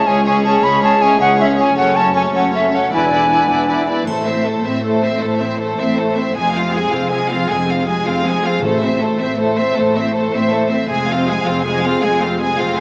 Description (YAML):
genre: cinematic, heroic adventure film score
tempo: 106 BPM (dotted quarters)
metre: 12/8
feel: straight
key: A harmonic minor from 4.1 s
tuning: A4 = 440 Hz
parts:
  - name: warm symphonic violin section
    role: melody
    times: 0.0-12.8 s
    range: C5 to Ab5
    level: -21 LUFS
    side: equal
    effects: none
  - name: rich symphonic violin section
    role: second line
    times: 0.0-12.8 s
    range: F4 to C5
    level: -22 LUFS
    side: equal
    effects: none
  - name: silver concert flute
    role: second line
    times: 0.0-3.9 s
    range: E5 to B5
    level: -14 LUFS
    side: equal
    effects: none
  - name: warm symphonic viola section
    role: accompaniment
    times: 0.0-12.8 s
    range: Ab3 to E4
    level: -22 LUFS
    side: equal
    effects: none
  - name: warm French horn section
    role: sustained chords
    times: 0.0-3.8 s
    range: G#3 to D4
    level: -21 LUFS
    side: equal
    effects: none
  - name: concert harp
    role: arpeggios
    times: 0.0-12.8 s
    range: E2 to F5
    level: -24 LUFS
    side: equal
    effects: none
  - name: dark symphonic double bass section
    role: bass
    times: 0.1-12.8 s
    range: E1 to C#2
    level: -26 LUFS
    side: equal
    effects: none
  - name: warm symphonic cello section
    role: bass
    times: 0.1-12.8 s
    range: C#2 to A2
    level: -22 LUFS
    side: equal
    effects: none
  - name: timpani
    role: percussion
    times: 4.1-4.6, 8.6-9.2 s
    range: A2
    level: -28 LUFS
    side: equal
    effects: none
  - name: triangle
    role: percussion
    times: 4.1-4.8 s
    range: none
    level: -41 LUFS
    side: equal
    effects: none
room: wet recital hall reverb, RT60 1.3 s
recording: small speaker sound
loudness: -13 LUFS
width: side -33 dB against mid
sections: 0.0-4.1 A section; 4.1-12.8 B section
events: none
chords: 0.0 C#m; 1.8 F#m; 2.9 E7; 4.1 Am; 6.4 Fm; 8.6 Am; 10.9 Fm